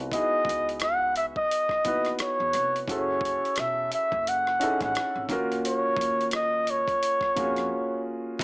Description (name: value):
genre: R&B, neo-soul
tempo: 87 BPM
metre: 4/4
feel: swing 58% on 16ths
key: unclear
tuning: A4 = 440 Hz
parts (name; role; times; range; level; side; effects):
- warm upright piano; accompaniment; 0.0-8.4 s; A#3 to B4; -31 LUFS; equal; plate reverb
- upright bass; bass; 0.0-8.4 s; E1 to E#2; -40 LUFS; equal; none
- boom bap sampler-style drum kit; drums; 0.0-8.4 s; hi-hat, kick drum, rim click; -34 LUFS; equal; none
- breathy flugelhorn; melody; 0.1-8.1 s; C#5 to F#5; -24 LUFS; equal; none
room: moderate studio reverb, RT60 0.6 s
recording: small speaker sound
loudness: -24 LUFS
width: side -26 dB against mid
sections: 0.0-8.4 A section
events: break 7.7-8.4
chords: 0.0 C#m9; 2.9 F#m9; 5.3 D#m9